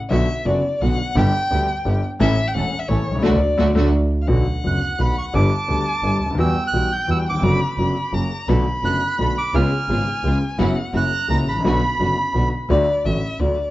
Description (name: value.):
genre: tango.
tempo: 172 BPM.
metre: 3/4.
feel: rubato.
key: D major, B minor from 4.3 s.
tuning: A4 = 437 Hz.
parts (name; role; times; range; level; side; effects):
warm violin; second line; 0.1-13.7 s; C#5 to B5; -25 LUFS; left 1 dB; none.
warm concert grand piano; accompaniment; 0.1-13.5 s; E1 to A4; -22 LUFS; left 2 dB; none.
rich studio string section; stabs; 0.1-3.9, 8.5-12.5 s; A3 to A4; -28 LUFS; right 4 dB; none.
clear double bass; bass; 0.1-13.5 s; E1 to E2; -21 LUFS; right 1 dB; none.
bandoneon; melody; 4.7-12.5 s; A#5 to G6; -25 LUFS; right 3 dB; tape echo.
room: moderate large studio reverb, RT60 0.9 s.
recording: dark, warm production, nothing above 8.0 kHz.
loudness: -17 LUFS.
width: side -16 dB against mid.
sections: 0.0-4.3 A section; 4.3-12.7 B section; 12.7-13.7 A section.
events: violin solo 0.0-4.3, 12.7-13.7; band accent 3.2-4.3.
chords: 0.1 Bm; 1.2 G; 2.2 A; 3.2 D; 4.3 Bm; 5.3 G; 6.4 Emadd9; 7.4 Bm/F#; 8.1 F#; 8.5 Bm7; 9.5 C#7; 10.6 F#7sus4; 10.9 F#7; 11.6 Bm; 12.7 D.